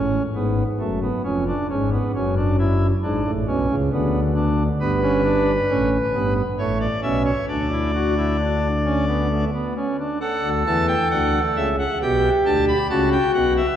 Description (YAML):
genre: classical, baroque-style 3-part fugue for pipe organ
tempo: 67 BPM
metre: 3/4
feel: straight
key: B minor, D major from 4.8 s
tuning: A4 = 441 Hz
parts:
  - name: pipe organ, cornet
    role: solo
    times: 0.0-13.8 s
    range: E#1 to B5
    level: -18 LUFS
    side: equal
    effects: none
room: wet church reverb, RT60 2.9 s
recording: worn, warbling old tape, cassette tape, warbly pitch drift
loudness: -18 LUFS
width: side -10 dB against mid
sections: 0.0-10.2 A section; 10.2-13.8 B section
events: none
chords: 0.0 C#5; 1.3 C#7/E#; 2.2 F#m; 3.9 Bm/D; 4.8 G; 6.6 A; 7.5 D; 12.0 G/B; 12.9 A7